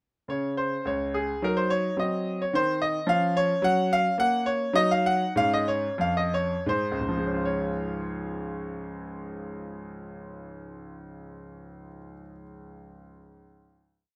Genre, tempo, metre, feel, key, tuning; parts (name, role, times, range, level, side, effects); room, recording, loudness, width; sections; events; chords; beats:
classical, baroque-style suite movement for grand piano; 78-111 BPM; 3/4; rubato; Db major; A4 = 440 Hz
bright concert grand piano; solo; 0.3-14.0 s; Db2 to Gb5; -28 LUFS; equal
little or no reverb; close, detailed microphones; -26 LUFS; mono
0.3-7.4 A section; 7.4-11.8 final chord
slowing down 2.8-7.4
0.3 N.C.; 1.4 Ebm/Gb; 2.0 Ebm6; 3.1 Db/F; 3.6 Gb; 4.7 Ebm/Gb; 5.3 Db/Ab; 6.7 Ab; 7.4 Db
| 0.28 0.85 1.42 | 1.98 2.54 3.08 | 3.63 4.17 4.75 | 5.35 5.98 6.68 | 7.43 8.16 8.90 | 9.64 10.37 11.10